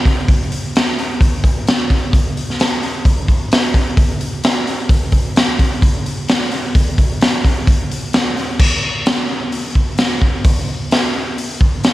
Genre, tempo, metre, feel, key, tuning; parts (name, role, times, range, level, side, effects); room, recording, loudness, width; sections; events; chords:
rock; 130 BPM; 4/4; straight
raw garage drum kit; drums; 0.1-11.9 s; crash cymbal, hi-hat, kick drum, snare drum; -13 LUFS; equal
light reverb; -13 LUFS; side -16 dB against mid
0.0-8.6 A section; 8.6-11.9 B section